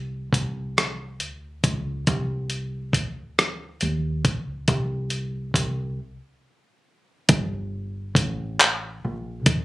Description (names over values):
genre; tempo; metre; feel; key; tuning
slow six-eight R&B; 46 BPM (dotted quarters); 6/8; straight; unclear; A4 = 440 Hz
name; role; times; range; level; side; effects
deep dub fingered electric bass; bass; 0.0-9.6 s; G1 to E2; -29 LUFS; equal; none
dusty soul sampler-style drum kit; drums; 0.3-9.6 s; handclaps, hi-hat, kick drum, rim click; -19 LUFS; equal; none
room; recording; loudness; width
little or no reverb; recorded on a phone in the room, club reverb, compression; -23 LUFS; side -18 dB against mid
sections
0.0-7.3 A section; 7.3-9.6 B section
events
break 6.0-7.3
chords
none